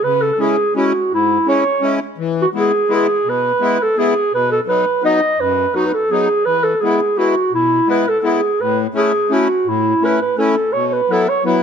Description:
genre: alpine folk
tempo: 168 BPM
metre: 3/4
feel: straight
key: E major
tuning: A4 = 439 Hz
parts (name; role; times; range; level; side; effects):
- warm clarinet; melody; 0.0-11.6 s; E4 to D#5; -15 LUFS; right 2 dB; slapback echo
- accordion; accompaniment; 0.0-11.6 s; F#2 to E4; -19 LUFS; left 4 dB; none
room: light reverb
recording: close, detailed microphones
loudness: -14 LUFS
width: side -7 dB against mid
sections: 0.0-11.6 A section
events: none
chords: 0.0 C#m; 2.2 E; 4.3 B; 6.5 E; 8.6 A; 10.8 Bsus4

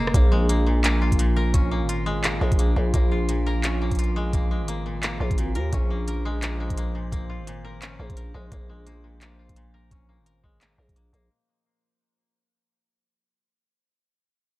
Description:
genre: half-time drum and bass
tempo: 172 BPM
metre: 4/4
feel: swing 59% on 16ths, half-time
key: Bb minor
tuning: A4 = 440 Hz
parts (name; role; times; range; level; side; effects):
- koto; arpeggios; 0.0-13.9 s; Bb2 to Bb4; -32 LUFS; left 2 dB; low-pass filter, analog delay
- growling 808-style bass; bass; 0.0-11.3 s; F1 to Eb2; -25 LUFS; equal; none
- metallic inharmonic drone; texture; 0.0-11.3 s; F3 to C5; -33 LUFS; right 2 dB; chorus, built-in reverb
- electronic kick drum; drums; 0.1-10.9 s; none; -23 LUFS; equal; none
- organic electronic drum kit; drums; 0.1-11.2 s; handclaps, hi-hat, rim click; -29 LUFS; equal; none
room: digital ambience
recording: dry, gritty hardware recording, cassette tape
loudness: -21 LUFS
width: side -18 dB against mid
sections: 0.1-11.3 A section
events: fade-out 0.1-11.3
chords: 0.1 Bbm

